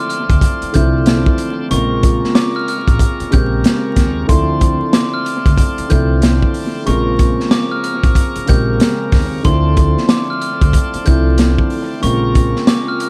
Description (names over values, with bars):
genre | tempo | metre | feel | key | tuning
hip hop, boom-bap hip-hop | 93 BPM | 4/4 | swing 62% on 16ths | D minor | A4 = 440 Hz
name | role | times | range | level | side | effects
glockenspiel with hard plastic mallets | melody | 0.0-13.1 s | C6 to G6 | -25 LUFS | equal | high-pass filter, low-pass filter, analog delay
dark concert grand piano | accompaniment | 0.0-13.1 s | Db3 to G4 | -22 LUFS | equal | cassette tape, high-pass filter, low-pass filter, analog delay
bright tonewheel organ | sustained chords | 0.0-13.1 s | F3 to Db6 | -32 LUFS | equal | slow rotary speaker, high-pass filter, low-pass filter
crunchy breakbeat drum kit | drums | 0.1-13.1 s | hi-hat, kick drum, snare drum | -17 LUFS | equal | analog delay
upright bass | bass | 0.3-12.5 s | A1 to Eb2 | -19 LUFS | equal | none
room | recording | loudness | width
light reverb, studio ambience | echo-heavy mix, vinyl crackle | -14 LUFS | mono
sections
0.0-13.1 A section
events
none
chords
0.0 Dm7; 1.7 Bbm7; 4.3 Dm7; 6.9 Bbm7; 9.5 Dm7; 12.0 Bbm7